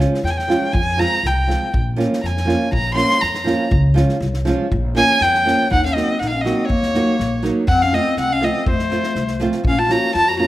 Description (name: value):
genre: balkan folk, Balkan wedding band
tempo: 121 BPM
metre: 2/4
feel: straight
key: Bb dorian sharp4, Eb dorian sharp4 from 5.7 s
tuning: A4 = 439 Hz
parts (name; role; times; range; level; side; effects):
- nylon-string guitar; accompaniment; 0.0-10.5 s; F3 to Gb4; -21 LUFS; right 2 dB; none
- upright bass; bass; 0.0-10.4 s; Bb1 to F2; -22 LUFS; equal; none
- unplugged drum kit; percussion; 0.0-10.2 s; kick drum, snare drum; -24 LUFS; equal; none
- warm violin; melody; 0.2-10.5 s; C5 to C6; -19 LUFS; equal; none
- dark clarinet; second line; 5.7-10.5 s; A3 to Gb4; -23 LUFS; left 3 dB; none
room: moderate recital hall reverb, RT60 1.4 s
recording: none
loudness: -15 LUFS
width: side -15 dB against mid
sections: 0.0-5.7 A section; 5.7-10.5 B section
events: violin solo 0.0-5.7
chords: 0.0 Db; 0.7 Fm; 1.7 Bbm; 3.7 Db; 4.7 Bbm; 5.7 Ebm; 7.7 F; 9.7 Bbm